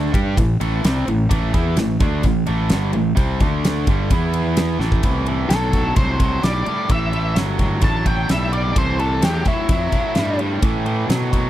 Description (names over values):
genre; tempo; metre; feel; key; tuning
blues rock power trio and southern rock; 129 BPM; 4/4; straight; A minor; A4 = 441 Hz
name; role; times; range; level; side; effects
tight distorted guitar; riff; 0.0-11.5 s; G2 to G4; -22 LUFS; right 1 dB; distortion
fuzz fingered electric bass; bass; 0.0-11.5 s; G1 to B2; -22 LUFS; equal; overdrive
huge arena drum kit; drums; 0.1-11.4 s; kick drum, ride cymbal, snare drum; -20 LUFS; equal; none
octave-fuzz lead guitar; melody; 5.5-10.4 s; E4 to A5; -23 LUFS; left 2 dB; distortion
room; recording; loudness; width
little or no reverb; dry, close 1970s-style studio recording, faint mains hum; -16 LUFS; side -13 dB against mid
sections
0.0-5.0 A section; 5.0-11.5 B section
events
drum fill 4.8; lead electric guitar solo 5.0-11.5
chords
0.1 Am; 3.4 D5; 3.9 G5; 4.1 E5; 4.8 A5; 5.0 Am